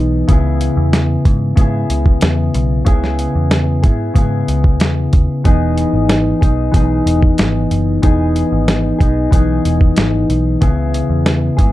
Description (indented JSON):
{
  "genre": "indie pop, bedroom pop",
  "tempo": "93 BPM",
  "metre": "4/4",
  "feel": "straight",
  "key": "unclear",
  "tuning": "A4 = 441 Hz",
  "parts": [
    { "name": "mellow electric guitar", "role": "accompaniment", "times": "0.0-11.7 s", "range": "C#3 to G#4", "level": "-16 LUFS", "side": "left 2 dB", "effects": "wide subtle chorus, warbly pitch drift, plate reverb" },
    { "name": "vintage muted picked electric bass", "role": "bass", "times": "0.0-11.7 s", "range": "E1 to G#2", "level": "-17 LUFS", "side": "equal", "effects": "none" },
    { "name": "dusty soul sampler-style drum kit", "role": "drums", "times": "0.3-11.7 s", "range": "hi-hat, kick drum, snare drum", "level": "-13 LUFS", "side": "equal", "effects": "none" }
  ],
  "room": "light reverb",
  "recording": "dark, warm production",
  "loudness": "-12 LUFS",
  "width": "side -15 dB against mid",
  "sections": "0.0-11.7 A section",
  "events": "none",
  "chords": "0.3 C#m7; 5.5 Emaj7; 10.6 C#m7"
}